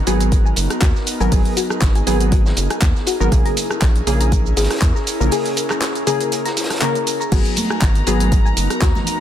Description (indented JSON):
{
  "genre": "deep house",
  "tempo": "120 BPM",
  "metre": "4/4",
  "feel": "swing 54% on 16ths",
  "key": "G# minor",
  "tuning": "A4 = 440 Hz",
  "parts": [
    { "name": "airy breathy pad", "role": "sustained chords", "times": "0.0-9.2 s", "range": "B3 to A#4", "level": "-25 LUFS", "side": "equal", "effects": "chorus, vintage 12-bit sampler grit, sidechain pumping" },
    { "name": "rubbery square bass", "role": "bass", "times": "0.0-8.9 s", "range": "F#1 to E2", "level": "-19 LUFS", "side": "equal", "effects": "sidechain pumping" },
    { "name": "soft round pluck", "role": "arpeggios", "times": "0.1-8.9 s", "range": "F#4 to C#6", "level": "-27 LUFS", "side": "left 7 dB", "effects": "chorus, sidechain pumping, ping-pong delay" },
    { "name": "warm analog keys", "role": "stabs", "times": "0.1-8.3 s", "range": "C#3 to A#4", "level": "-22 LUFS", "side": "equal", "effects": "chorus, sidechain pumping, digital delay" },
    { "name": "deep house drum kit", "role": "drums", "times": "0.1-9.2 s", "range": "crash cymbal, handclaps, hi-hat, rim click, shaker", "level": "-23 LUFS", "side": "right 1 dB", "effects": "none" },
    { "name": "vintage drum kit", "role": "drums", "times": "0.1-9.2 s", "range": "hi-hat, snare drum", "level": "-31 LUFS", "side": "equal", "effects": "none" },
    { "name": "electronic kick drum", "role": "drums", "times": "0.3-8.9 s", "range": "none", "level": "-16 LUFS", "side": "equal", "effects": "none" },
    { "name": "warm chamber violin section", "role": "texture", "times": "7.3-9.2 s", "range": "A#5", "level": "-28 LUFS", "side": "left 2 dB", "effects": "sidechain pumping" },
    { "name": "congas", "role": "percussion", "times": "7.6-9.0 s", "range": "none", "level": "-27 LUFS", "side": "equal", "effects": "sidechain pumping on perc" }
  ],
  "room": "light reverb, studio ambience",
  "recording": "dense, heavily limited modern master",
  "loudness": "-15 LUFS",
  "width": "side -11 dB against mid",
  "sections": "0.0-9.2 A section",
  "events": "break 5.3-7.3",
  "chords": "0.0 G#m7; 3.3 A#m7b5; 7.3 G#m7"
}